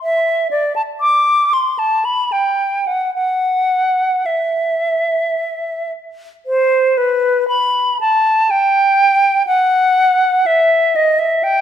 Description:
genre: classical, baroque-style fantasia for unaccompanied flute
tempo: 53-63 BPM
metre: 3/4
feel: rubato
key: E minor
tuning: A4 = 440 Hz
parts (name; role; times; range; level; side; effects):
- silver concert flute; solo; 0.0-11.6 s; B4 to D6; -13 LUFS; equal; none
room: moderate recital hall reverb, RT60 1.6 s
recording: none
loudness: -13 LUFS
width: side -9 dB against mid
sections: 0.0-6.5 A section; 6.5-11.6 B section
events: none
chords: none

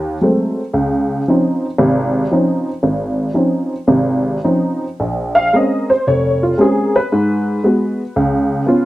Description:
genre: solo jazz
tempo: 115 BPM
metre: 4/4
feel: swing 67% on 8ths, rubato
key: Db major, Bb minor from 5.0 s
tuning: A4 = 440 Hz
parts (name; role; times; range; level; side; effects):
- honky-tonk upright piano; solo; 0.0-8.9 s; F1 to F5; -13 LUFS; equal; none
room: light reverb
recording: band playing live in one room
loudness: -13 LUFS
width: side -16 dB against mid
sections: 0.0-5.0 A section; 5.0-8.9 B section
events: honky-tonk piano solo 5.0-8.9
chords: 0.0 Ab7b9; 0.8 Dbmaj9; 5.0 Bbm9; 7.1 Abm7; 8.2 Db7

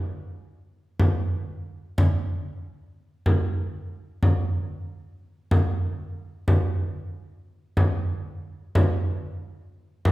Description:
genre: contemporary instrumental, contemporary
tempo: free time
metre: none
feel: none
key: none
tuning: none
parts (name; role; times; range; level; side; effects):
- frame drum; percussion; 1.0-10.1 s; none; -23 LUFS; equal; none
room: wet recital hall reverb, RT60 1.5 s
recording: heard from further back in the room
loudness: -23 LUFS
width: side -17 dB against mid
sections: 0.0-10.1 A section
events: none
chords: none

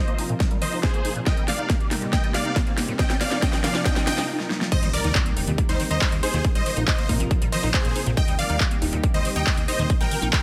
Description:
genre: uplifting trance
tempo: 139 BPM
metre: 4/4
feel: straight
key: Eb major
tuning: A4 = 440 Hz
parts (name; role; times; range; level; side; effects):
- supersaw chords; melody; 0.0-10.4 s; Eb4 to G5; -31 LUFS; equal; sidechain pumping, low-pass filter, tape echo
- unison pluck; second line; 0.0-10.4 s; C5 to G5; -37 LUFS; equal; none
- lush unison pad; sustained chords; 0.0-10.4 s; C3 to Bb4; -34 LUFS; equal; chorus, sidechain pumping
- riser and impact; sound effects; 1.9-6.4 s; none; -37 LUFS; equal; none
- liquid acid bass; arpeggios; 0.1-10.4 s; Bb2 to Eb4; -35 LUFS; equal; phaser, analog chorus, sidechain pumping, tape echo
- big-room dance drum kit; drums; 0.1-10.4 s; crash cymbal, handclaps, hi-hat, snare drum; -30 LUFS; equal; overdrive, sidechain pumping on hats, sidechain pumping on cymbals
- plucky analog bass; bass; 0.2-10.3 s; Eb1 to Bb2; -30 LUFS; equal; sidechain pumping, high-pass filter
- electronic kick drum; drums; 0.4-10.4 s; none; -25 LUFS; equal; overdrive
room: light reverb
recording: none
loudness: -23 LUFS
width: mono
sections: 0.0-4.7 A section; 4.7-10.4 B section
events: build-up 0.0-4.7; drum fill 0.0-4.3, 4.4-4.7; filter sweep on acid bass 0.0-4.7; break 4.3-4.7; drop 4.7-10.4; impact 4.7-6.4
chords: 0.0 Bbsus2; 1.3 Eb6; 3.0 Bbsus2; 4.7 Eb6; 6.4 Bbsus2; 8.2 Eb6; 9.9 Bbsus2

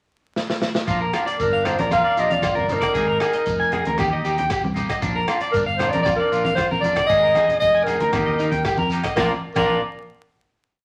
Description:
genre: highlife guitar band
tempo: 116 BPM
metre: 4/4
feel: straight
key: Bb mixolydian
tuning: A4 = 440 Hz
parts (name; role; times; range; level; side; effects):
- crunchy breakbeat drum kit; drums; 0.4-9.7 s; crash cymbal, hi-hat, kick drum, rim click, snare drum; -31 LUFS; equal; none
- clean electric guitar; accompaniment; 0.9-9.8 s; Eb3 to Bb4; -33 LUFS; equal; none
- electric guitar at the edge of break-up; arpeggios; 0.9-9.8 s; Eb4 to Ab5; -26 LUFS; equal; none
- fingered electric bass; bass; 0.9-9.8 s; F1 to F2; -31 LUFS; equal; none
- shekere; percussion; 0.9-9.8 s; none; -39 LUFS; equal; none
- agogo bells; percussion; 1.1-9.7 s; none; -35 LUFS; equal; none
- breathy clarinet; melody; 1.4-9.8 s; Bb4 to F5; -22 LUFS; equal; none
- breathy trumpet; second line; 1.4-9.8 s; D4 to Bb4; -36 LUFS; equal; none
- congas; percussion; 1.7-9.8 s; none; -33 LUFS; equal; none
room: wet studio reverb, RT60 0.7 s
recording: vinyl crackle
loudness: -20 LUFS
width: mono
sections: 0.0-0.9 pickup bar; 0.9-9.2 A section; 9.2-10.8 final chord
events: drum fill 0.4-0.9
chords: 0.0 N.C.; 0.9 Bb; 3.0 Absus2; 4.0 Eb; 5.0 Bb; 7.1 Absus2; 8.1 Eb; 9.2 Bb

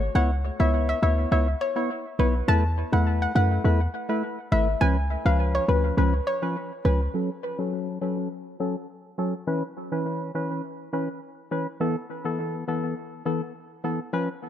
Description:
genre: dancehall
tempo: 103 BPM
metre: 4/4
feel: straight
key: F# minor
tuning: A4 = 435 Hz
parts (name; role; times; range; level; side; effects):
- percussive organ stab; accompaniment; 0.0-14.3 s; E3 to C#5; -27 LUFS; left 2 dB; chorus, low-pass filter, analog delay
- short 808-style bass; bass; 0.0-7.1 s; G#1 to F#2; -22 LUFS; equal; none
- soft round pluck; melody; 0.2-6.9 s; B4 to A5; -28 LUFS; equal; chorus, analog delay
room: light reverb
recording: echo-heavy mix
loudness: -23 LUFS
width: side -10 dB against mid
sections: 0.0-7.1 A section; 7.1-14.5 B section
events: filter sweep on synth stab 7.1-14.5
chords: 0.2 C#m7; 2.5 Esus4; 4.8 C#7; 7.1 F#m; 9.5 C#m7; 11.8 Esus4

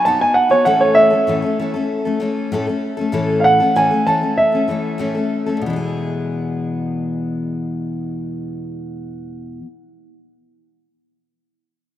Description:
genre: folk rock and heartland rock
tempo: 96 BPM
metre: 4/4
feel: straight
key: E major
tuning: A4 = 437 Hz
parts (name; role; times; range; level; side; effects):
- warm grand piano; melody; 0.0-5.6 s; C#5 to A5; -14 LUFS; right 2 dB; none
- picked steel-string acoustic guitar; accompaniment; 0.0-9.7 s; E2 to A4; -20 LUFS; left 3 dB; none
room: moderate lush hall reverb, RT60 2.6 s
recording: rough home demo mix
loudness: -15 LUFS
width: side -12 dB against mid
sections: 0.0-5.6 A section; 5.6-8.1 B section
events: grand piano solo 0.0-5.6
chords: 0.0 B; 0.6 A; 5.6 E

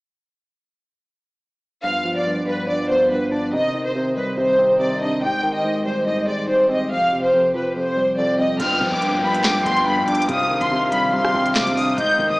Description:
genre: hip hop, drill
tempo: 142 BPM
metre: 4/4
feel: half-time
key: C harmonic minor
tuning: A4 = 440 Hz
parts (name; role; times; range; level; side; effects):
- rich symphonic violin section; melody; 1.8-12.4 s; B4 to G6; -20 LUFS; equal; none
- tine electric piano; accompaniment; 1.8-12.4 s; F2 to D4; -24 LUFS; equal; medium stereo tremolo
- pipe organ, sparkling flutes; sustained chords; 1.8-12.4 s; F2 to C5; -30 LUFS; equal; none
- breathy flute-like synth lead; second line; 8.6-12.4 s; Eb5 to G5; -21 LUFS; left 1 dB; chorus, tape echo
- short 808-style bass; bass; 8.6-12.4 s; G1 to G3; -34 LUFS; equal; none
- drill drum kit; drums; 8.6-12.1 s; handclaps, hi-hat, rim click, snare drum; -24 LUFS; equal; none
- downlifter; sound effects; 8.6-12.0 s; none; -30 LUFS; equal; none
room: moderate lush hall reverb, RT60 1.8 s, digital ambience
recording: played on a big sound system in a bare room, stone room reverb, small speaker sound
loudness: -17 LUFS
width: side -22 dB against mid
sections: 1.8-8.6 A section; 8.6-12.4 B section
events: none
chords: 1.8 G7; 3.5 Cmadd9; 5.2 Abmaj7; 6.9 Fsus2; 8.6 G7; 10.3 Cmadd9

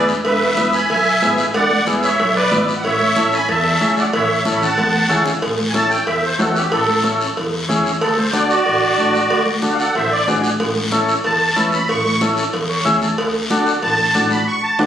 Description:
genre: latin, cumbia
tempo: 186 BPM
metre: 4/4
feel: straight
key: A major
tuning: A4 = 443 Hz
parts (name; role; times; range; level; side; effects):
- musette accordion; melody; 0.0-14.8 s; F#4 to C#6; -17 LUFS; right 1 dB; none
- combo organ; accompaniment; 0.0-14.9 s; B3 to A5; -21 LUFS; left 2 dB; none
- upright bass; bass; 0.0-14.9 s; E1 to E2; -25 LUFS; equal; none
- guiro; percussion; 0.1-14.9 s; none; -26 LUFS; left 2 dB; none
- congas; percussion; 0.2-14.9 s; none; -24 LUFS; equal; none
- cowbell and timbales; percussion; 0.2-14.9 s; none; -23 LUFS; right 1 dB; none
room: moderate plate reverb, RT60 2.5 s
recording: recorded on a phone in the room, studio reverb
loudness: -14 LUFS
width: side -10 dB against mid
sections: 0.0-5.4 A section; 5.4-14.9 B section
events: drum fill 4.8-5.4; accordion solo 5.4-14.9; transistor combo organ fill 12.5-13.2; band accent 14.5-14.9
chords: 0.0 E7; 2.8 A; 8.0 D; 10.6 A; 13.2 D

